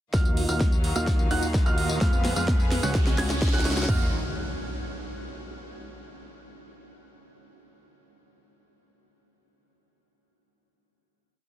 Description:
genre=EDM, festival progressive house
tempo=128 BPM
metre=4/4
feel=straight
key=Eb minor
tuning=A4 = 440 Hz
part: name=rich studio string section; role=sustained chords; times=0.1-4.1 s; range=Db3 to F5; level=-37 LUFS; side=left 2 dB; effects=sidechain pumping
part: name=dark concert grand piano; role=arpeggios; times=0.1-4.1 s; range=F6 to Ab6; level=-34 LUFS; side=right 4 dB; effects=sidechain pumping, digital delay
part: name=dense compressed supersaw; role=riff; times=0.1-4.1 s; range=Ab3 to Ab5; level=-33 LUFS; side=right 1 dB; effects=cassette tape, sidechain pumping, low-pass filter, digital delay
part: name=fat analog bass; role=bass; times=0.1-4.1 s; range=Db2 to F2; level=-30 LUFS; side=equal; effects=sidechain pumping
part: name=big-room dance drum kit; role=drums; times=0.1-4.0 s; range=hi-hat, kick drum, toms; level=-24 LUFS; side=equal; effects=none
part: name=big-room dance drum kit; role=drums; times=0.1-3.9 s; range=hi-hat, snare drum, tambourine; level=-33 LUFS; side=equal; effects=none
part: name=riser and impact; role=sound effects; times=1.5-5.8 s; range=none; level=-37 LUFS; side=equal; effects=none
room=little or no reverb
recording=dense, heavily limited modern master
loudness=-22 LUFS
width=side -13 dB against mid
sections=0.1-3.9 build; 3.9-5.8 final chord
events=build-up 0.1-3.9; drum fill 0.1-3.9; filter sweep on supersaw synth 0.1-3.9; riser 1.5-3.9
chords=0.1 Ebmadd9; 2.0 Fdim; 2.9 Dbsus4; 3.9 Ebmadd9

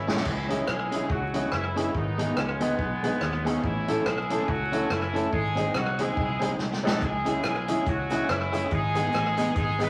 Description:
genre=ska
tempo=142 BPM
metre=4/4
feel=swing 58% on 8ths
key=C# minor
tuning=A4 = 440 Hz
part: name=clear horn section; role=melody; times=0.0-9.9 s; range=C#3 to B4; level=-32 LUFS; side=equal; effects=none
part: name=fingered electric bass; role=bass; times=0.0-9.9 s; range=F#1 to D#2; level=-34 LUFS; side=equal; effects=none
part: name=electric guitar at the edge of break-up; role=accompaniment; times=0.1-9.9 s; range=B3 to A4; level=-32 LUFS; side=equal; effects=spring reverb, slapback echo
part: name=warm upright piano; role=stabs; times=0.1-9.9 s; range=G#3 to A4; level=-36 LUFS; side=equal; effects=none
part: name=swinging big-band drum kit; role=drums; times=0.1-9.9 s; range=crash cymbal, hi-hat, kick drum, rim click, snare drum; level=-34 LUFS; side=equal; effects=slapback echo
part: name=cabasa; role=percussion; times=7.0-9.9 s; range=none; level=-57 LUFS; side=equal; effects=none
room=wet large studio reverb, RT60 1.4 s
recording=vinyl crackle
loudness=-27 LUFS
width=mono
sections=0.3-9.9 A section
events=drum fill 0.0, 6.6-7.0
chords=0.3 C#m; 1.9 G#m; 3.6 A; 5.3 G#; 7.0 C#m; 8.7 G#m

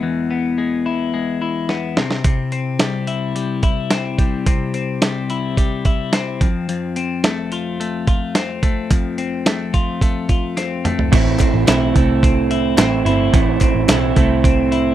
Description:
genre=jangly indie pop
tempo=108 BPM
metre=4/4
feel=straight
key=A minor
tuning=A4 = 441 Hz
part: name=twelve-string electric guitar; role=arpeggios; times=0.0-14.9 s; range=E2 to F4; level=-20 LUFS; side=left 5 dB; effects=slapback echo
part: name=dusty soul sampler-style drum kit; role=drums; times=1.7-14.8 s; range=crash cymbal, hi-hat, kick drum, snare drum, toms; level=-16 LUFS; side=right 1 dB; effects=none
part: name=electric guitar through a small old amp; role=accompaniment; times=11.1-14.9 s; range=A2 to E4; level=-18 LUFS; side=right 9 dB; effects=none
part: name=vintage muted picked electric bass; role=bass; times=11.1-14.9 s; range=G1 to C2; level=-20 LUFS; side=right 1 dB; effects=none
part: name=group handclap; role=percussion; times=11.4-14.0 s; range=none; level=-30 LUFS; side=left 5 dB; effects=none
room=light reverb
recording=dry, close 1970s-style studio recording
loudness=-15 LUFS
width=side -12 dB against mid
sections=0.0-11.1 A section; 11.1-14.9 B section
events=drum fill 1.7-2.2, 10.6-11.1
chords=0.0 E; 2.0 C; 6.4 F; 11.1 Am

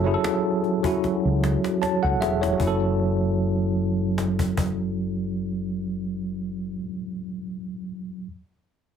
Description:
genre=R&B, neo-soul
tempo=76 BPM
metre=4/4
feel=swing 54% on 16ths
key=F# minor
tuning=A4 = 439 Hz
part: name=tine electric piano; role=accompaniment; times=0.0-8.3 s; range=F#3 to A5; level=-24 LUFS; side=equal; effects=overdrive, fast stereo tremolo
part: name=mellow fretless electric bass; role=bass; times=0.0-6.8 s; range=E1 to C#2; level=-27 LUFS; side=equal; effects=none
part: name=cajon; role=drums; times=0.2-4.8 s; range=none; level=-30 LUFS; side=equal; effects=none
room=moderate small room reverb, RT60 0.5 s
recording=heavily compressed radio sound, multiband compression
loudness=-22 LUFS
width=side -7 dB against mid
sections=0.0-2.6 A section; 2.6-5.8 B section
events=drum fill 1.0-2.6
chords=0.0 F#m7

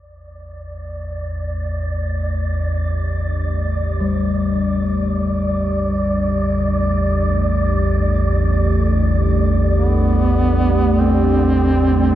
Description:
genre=dark ambient drone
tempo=free time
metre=none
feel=none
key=unclear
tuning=A4 = 440 Hz
part: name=deep dark ambient pad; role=sustained chords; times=1.0-12.2 s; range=A3 to A4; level=-23 LUFS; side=right 1 dB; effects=chorus, built-in reverb
part: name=deep rumbling drone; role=drone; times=0.4-12.2 s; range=A1 to E2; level=-18 LUFS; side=equal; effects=built-in reverb, wide subtle chorus
part: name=wind-like tuned noise texture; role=texture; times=0.6-12.2 s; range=D5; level=-26 LUFS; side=right 1 dB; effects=built-in reverb, shimmer reverb
part: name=gamelan-type bronze metallophone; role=arpeggios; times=4.0-11.5 s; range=G3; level=-24 LUFS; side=left 3 dB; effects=diffuse ambient delay
part: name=mellow duduk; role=melody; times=9.8-12.2 s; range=B3 to C4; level=-19 LUFS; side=right 1 dB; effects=none
room=wet cathedral reverb, RT60 5.6 s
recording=dark, warm production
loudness=-16 LUFS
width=side -12 dB against mid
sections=0.0-12.2 A section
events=filter sweep on synth drone 0.0-12.2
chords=0.0 A5

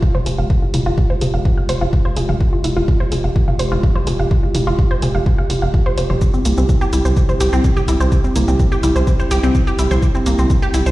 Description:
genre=melodic techno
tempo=126 BPM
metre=4/4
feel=straight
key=F harmonic minor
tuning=A4 = 440 Hz
part: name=dark analog pad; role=sustained chords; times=0.0-10.9 s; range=Ab3 to G4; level=-23 LUFS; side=right 1 dB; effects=chorus, sidechain pumping
part: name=electronic kick drum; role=drums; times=0.0-10.6 s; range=none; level=-16 LUFS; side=equal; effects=none
part: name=analog pluck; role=arpeggios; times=0.1-10.9 s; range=Bb3 to F5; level=-22 LUFS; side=equal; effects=chorus, cassette tape, sidechain pumping, digital delay
part: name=punchy analog drum machine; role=drums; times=0.1-10.9 s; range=hi-hat, shaker, toms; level=-25 LUFS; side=equal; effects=sidechain pumping on hats, sidechain pumping on toms, sidechain pumping on cymbals, sidechain pumping on perc
part: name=tight sequencer bass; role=bass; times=0.3-10.9 s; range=F1 to C2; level=-18 LUFS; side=equal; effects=sidechain pumping
room=light reverb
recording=played on a big sound system in a bare room, stone room reverb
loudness=-14 LUFS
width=side -17 dB against mid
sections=0.0-10.9 A section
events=filter sweep on synth arpeggio sound 0.0-10.9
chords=0.0 Fmadd9; 6.2 C

